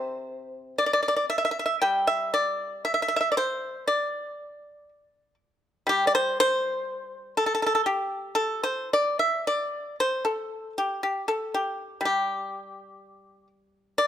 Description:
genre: chinese traditional, Chinese solo plucked strings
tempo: 55-62 BPM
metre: 2/4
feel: rubato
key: G zhi mode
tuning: A4 = 440 Hz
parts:
  - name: pipa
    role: solo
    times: 0.0-14.1 s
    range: C3 to G5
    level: -24 LUFS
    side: equal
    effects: none
room: light reverb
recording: close, detailed microphones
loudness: -24 LUFS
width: side -10 dB against mid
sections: 0.0-10.0 A section; 10.0-14.1 B section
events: none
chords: none

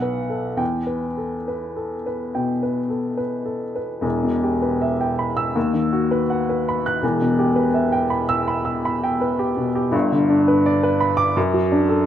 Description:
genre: classical, romantic character piece for solo piano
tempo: 67-86 BPM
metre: 4/4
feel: rubato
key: E minor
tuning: A4 = 440 Hz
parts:
  - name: warm upright piano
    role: solo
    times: 0.0-12.1 s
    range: E1 to F#6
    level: -18 LUFS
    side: equal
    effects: none
room: light reverb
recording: close, detailed microphones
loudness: -19 LUFS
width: side -10 dB against mid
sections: 0.0-4.0 A section; 4.0-12.1 B section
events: none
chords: 0.0 B5; 0.6 Em; 5.6 B/D#; 7.0 Em; 9.9 G; 11.4 D/F#

